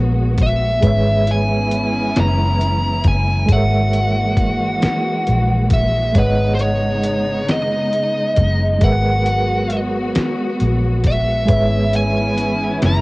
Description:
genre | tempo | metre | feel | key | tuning
slow six-eight R&B | 45 BPM (dotted quarters) | 6/8 | straight | unclear | A4 = 440 Hz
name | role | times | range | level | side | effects
reed electric piano | accompaniment | 0.0-13.0 s | G#3 to F#5 | -22 LUFS | right 2 dB | fast tremolo, cassette tape
muted studio string section | sustained chords | 0.0-13.0 s | C#3 to F#4 | -24 LUFS | equal | cassette tape
vintage muted fingered electric bass | bass | 0.0-13.0 s | F#1 to A#1 | -18 LUFS | equal | none
fuzz lead guitar | melody | 0.4-13.0 s | B4 to A#5 | -20 LUFS | equal | distortion, cassette tape
dusty soul sampler-style drum kit | drums | 0.4-13.0 s | hi-hat, kick drum, snare drum | -19 LUFS | equal | cassette tape
room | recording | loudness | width
little or no reverb | home recording on cassette | -14 LUFS | side -22 dB against mid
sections
0.0-13.0 A section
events
none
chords
0.0 G#m9; 0.8 C#m7/G#; 3.5 F#9/G#; 6.2 B69/G#; 8.8 G#m9; 11.5 C#m7/G#

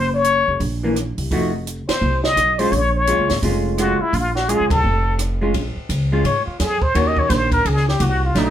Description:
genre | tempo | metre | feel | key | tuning
jazz, small-group swing and bop | 170 BPM | 4/4 | swing 63% on 8ths | Bb minor | A4 = 441 Hz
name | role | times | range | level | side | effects
trumpet with plunger mute | melody | 0.0-8.5 s | Eb4 to Eb5 | -19 LUFS | left 2 dB | none
upright bass | bass | 0.0-8.5 s | F1 to Ab2 | -21 LUFS | equal | none
compact cocktail drum kit | drums | 0.2-8.5 s | hi-hat, kick drum, ride cymbal, rim click, snare drum | -25 LUFS | right 1 dB | none
vintage hollow-body jazz guitar | accompaniment | 0.8-8.5 s | Eb3 to Gb4 | -22 LUFS | equal | none
room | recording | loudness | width
moderate studio reverb, RT60 0.6 s | band playing live in one room | -16 LUFS | side -10 dB against mid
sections
0.0-5.5 A section; 5.5-8.5 A section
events
band accent 1.8, 4.7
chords
0.0 Gb; 1.3 F7b9; 2.7 Bbm7; 4.8 F; 5.5 Bbm7; 7.0 Ebm7

